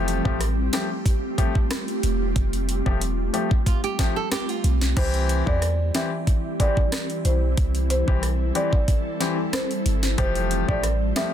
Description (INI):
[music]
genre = dancehall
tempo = 92 BPM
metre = 4/4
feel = straight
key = C major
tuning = A4 = 440 Hz
[part]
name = warm concert grand piano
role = accompaniment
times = 0.0-11.3 s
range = E3 to G4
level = -29 LUFS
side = left 6 dB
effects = none
[part]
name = ethereal airy pad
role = sustained chords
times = 0.0-11.3 s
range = E3 to A4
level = -29 LUFS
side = right 1 dB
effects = ensemble chorus, built-in reverb, sidechain pumping
[part]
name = clean 808-style bass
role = bass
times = 0.0-11.1 s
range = E1 to E2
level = -23 LUFS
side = equal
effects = none
[part]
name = island pop drum kit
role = drums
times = 0.1-11.3 s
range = crash cymbal, hi-hat, kick drum, rim click, snare drum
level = -24 LUFS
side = equal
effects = overdrive
[part]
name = flamenco guitar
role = arpeggios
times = 3.7-4.9 s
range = F4 to A4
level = -30 LUFS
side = right 9 dB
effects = none
[part]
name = marimba with medium mallets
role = melody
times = 5.0-11.3 s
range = C5 to E5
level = -29 LUFS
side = right 1 dB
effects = digital delay
[sound]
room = digital ambience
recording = dense, heavily limited modern master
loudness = -20 LUFS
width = side -10 dB against mid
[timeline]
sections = 0.0-5.0 A section; 5.0-11.3 B section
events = none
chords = 0.0 Fadd9; 5.0 C; 10.2 Fadd9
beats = 0.40 1.06 1.71 | 2.36 3.01 3.66 4.32 | 4.97 5.62 6.27 6.92 | 7.58 8.23 8.88 9.53 | 10.19 10.84